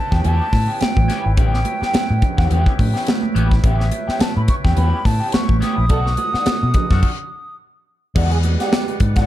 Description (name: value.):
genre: funk.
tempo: 106 BPM.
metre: 4/4.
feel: swing 56% on 16ths.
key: unclear.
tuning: A4 = 440 Hz.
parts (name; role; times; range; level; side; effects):
breathy mellow silver concert flute; melody; 0.0-7.6 s; E5 to D#6; -24 LUFS; right 1 dB; none.
percussive tonewheel organ; sustained chords; 0.0-9.3 s; G#3 to G5; -32 LUFS; left 1 dB; slow rotary speaker, overdrive.
electric guitar at the edge of break-up; accompaniment; 0.1-9.3 s; D#3 to G4; -27 LUFS; left 2 dB; wah.
vintage muted fingered electric bass; bass; 0.1-9.3 s; G#1 to B2; -17 LUFS; equal; none.
crisp fusion drum kit; drums; 0.1-9.3 s; crash cymbal, hi-hat, kick drum, snare drum; -19 LUFS; equal; none.
congas; percussion; 0.2-8.9 s; none; -27 LUFS; right 7 dB; none.
warm trombone; second line; 5.9-9.0 s; G4 to A4; -27 LUFS; right 7 dB; none.
tambourine; percussion; 8.7-8.9 s; none; -39 LUFS; left 5 dB; none.
room: small room ambience.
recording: dark, warm production.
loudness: -15 LUFS.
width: side -14 dB against mid.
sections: 0.0-8.2 A section; 8.2-9.3 B section.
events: band accent 5.9-8.2; stop 7.0-8.2.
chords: 0.0 A9; 5.9 B7#9; 8.2 E9.